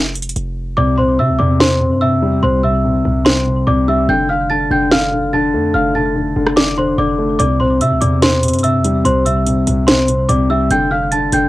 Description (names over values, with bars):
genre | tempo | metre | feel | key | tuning
hip hop, trap | 145 BPM | 4/4 | half-time | C major | A4 = 440 Hz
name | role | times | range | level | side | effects
hard-hitting 808-style bass | bass | 0.0-11.5 s | F1 to C3 | -20 LUFS | right 1 dB | none
trap drum kit | drums | 0.2-11.4 s | hi-hat, rim click, snare drum | -15 LUFS | right 1 dB | overdrive, cassette tape
worn celesta | melody | 0.8-11.5 s | C5 to A6 | -17 LUFS | right 1 dB | cassette tape
dark grand piano | accompaniment | 0.8-11.5 s | C3 to A3 | -16 LUFS | left 2 dB | cassette tape
room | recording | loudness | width
light reverb | home recording on cassette | -12 LUFS | side -17 dB against mid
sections
0.0-11.5 A section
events
break 0.0-0.8; hi-hats muted 0.8-7.4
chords
0.0 N.C.; 0.8 C; 4.1 F6; 7.4 C; 10.7 F6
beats
0.36 | 0.78 1.19 1.60 2.02 | 2.43 2.84 3.26 3.67 | 4.09 4.50 4.91 5.33 | 5.74 6.16 6.57 6.98 | 7.40 7.81 8.22 8.64 | 9.05 9.46 9.88 10.29 | 10.71 11.12